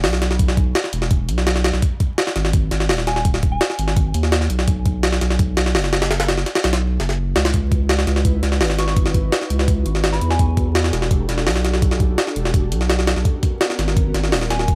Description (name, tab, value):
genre	drum and bass, jungle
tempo	168 BPM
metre	4/4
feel	straight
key	C# minor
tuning	A4 = 441 Hz
part	saturated sub bass	bass	0.0-14.8 s	D#1 to E2	-22 LUFS	equal	none
part	jungle sampler-style drum kit	drums	0.0-14.8 s	hi-hat, kick drum, snare drum	-21 LUFS	equal	none
part	soft synth bell	melody	3.1-3.8, 8.8-10.4, 14.5-14.6 s	G#5 to C#6	-32 LUFS	equal	chorus, phaser, dub echo
part	airy breathy pad	sustained chords	7.7-14.8 s	B3 to B4	-31 LUFS	equal	chorus
room	digital ambience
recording	vinyl crackle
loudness	-19 LUFS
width	mono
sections	0.0-14.8 A section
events	none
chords	0.0 E5; 1.8 G#5; 4.7 B5; 7.5 C#m11; 10.4 Em11; 13.3 G#m11